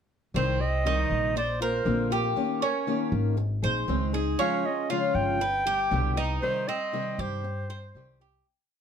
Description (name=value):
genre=latin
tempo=118 BPM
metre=4/4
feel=straight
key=C minor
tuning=A4 = 441 Hz
part: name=picked old ladder-braced acoustic guitar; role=accompaniment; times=0.3-8.5 s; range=B2 to Ab4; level=-30 LUFS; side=left 3 dB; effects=none
part: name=upright bass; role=bass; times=0.3-8.4 s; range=G1 to G2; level=-29 LUFS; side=equal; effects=none
part: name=breathy clarinet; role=melody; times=0.4-8.2 s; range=C5 to G5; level=-29 LUFS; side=right 1 dB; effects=none
part: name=Cuban tres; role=arpeggios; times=0.4-8.5 s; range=C4 to C5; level=-30 LUFS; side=right 3 dB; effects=none
room=light reverb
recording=close, detailed microphones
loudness=-24 LUFS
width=side -7 dB against mid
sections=0.4-8.5 A section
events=fade-out 6.4-8.5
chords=0.4 Cm; 1.4 Bbadd9; 2.4 Eb7; 3.4 Ab; 4.4 Db; 5.4 G; 6.4 Cm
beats=| 0.35 0.86 1.36 1.86 | 2.37 2.88 3.38 3.89 | 4.40 4.90 5.41 5.92 | 6.43 6.93 7.44 7.95